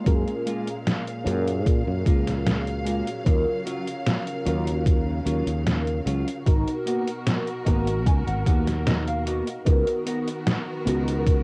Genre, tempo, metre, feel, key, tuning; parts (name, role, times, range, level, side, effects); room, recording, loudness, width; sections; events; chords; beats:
vaporwave; 75 BPM; 4/4; straight; G# dorian; A4 = 441 Hz
mellow FM electric piano; accompaniment; 0.0-11.4 s; F#3 to A#4; -32 LUFS; equal; phaser, ensemble chorus, tape echo
clear studio string section; sustained chords; 0.0-11.4 s; A#2 to E#5; -36 LUFS; equal
mellow electric guitar; riff; 0.0-11.1 s; F#3 to A#5; -33 LUFS; equal; lush chorus, tape echo
sustaining fretless electric bass; bass; 0.1-11.4 s; G#1 to A#2; -28 LUFS; equal
detuned 8-bit digital drum machine; drums; 0.1-11.4 s; hi-hat, snare drum; -29 LUFS; equal; overdrive, cassette tape
electronic kick drum; drums; 0.1-11.4 s; -23 LUFS; equal; overdrive, cassette tape
light reverb; home recording on cassette; -24 LUFS; mono
0.0-9.7 A section; 9.7-11.4 B section
clean electric guitar fill 7.3-9.7
0.0 F#maj9; 3.3 D#m9; 6.5 G#m9; 9.7 C#13sus4
| 0.07 0.86 1.67 2.46 | 3.27 4.07 4.87 5.67 | 6.46 7.26 8.06 8.87 | 9.66 10.46 11.27